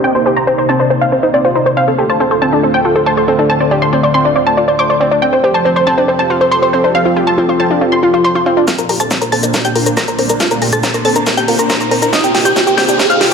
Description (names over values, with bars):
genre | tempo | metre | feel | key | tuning
uplifting trance | 139 BPM | 4/4 | straight | unclear | A4 = 440 Hz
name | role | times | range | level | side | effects
wide unison pluck | melody | 0.0-13.3 s | Eb4 to D6 | -13 LUFS | right 1 dB | sidechain pumping, ping-pong delay
lush unison pad | sustained chords | 0.0-13.3 s | Bb2 to C5 | -18 LUFS | equal | chorus, phaser, sidechain pumping
analog pluck | arpeggios | 0.0-13.3 s | C4 to C5 | -17 LUFS | left 2 dB | chorus, sidechain pumping, ping-pong delay
analog pluck | second line | 8.7-13.3 s | G5 to Bb6 | -18 LUFS | left 1 dB | chorus, sidechain pumping, ping-pong delay
big-room dance drum kit | drums | 8.7-13.3 s | hi-hat, shaker, snare drum | -16 LUFS | left 1 dB | high-pass filter on snare, sidechain pumping on hats, high-pass filter on hats, sidechain pumping on perc, high-pass filter on perc
electronic kick drum | drums | 8.7-13.1 s | none | -23 LUFS | equal | high-pass filter on kick
riser | sound effects | 10.2-13.3 s | none | -19 LUFS | right 3 dB | none
room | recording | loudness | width
wet concert hall reverb, RT60 2.0 s | high-pass filter, low-pass filter | -10 LUFS | side -6 dB against mid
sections
0.0-8.7 A section; 8.7-13.3 B section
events
filter sweep on synth pluck 0.0-8.7, 8.7-13.3; filter sweep 0.0-8.7; build-up 8.7-13.3; drum fill 8.7-13.3; riser 10.2-13.3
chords
0.0 Cm7; 1.8 Dm7; 5.2 Fadd9; 8.7 Bbadd9; 12.1 Cm7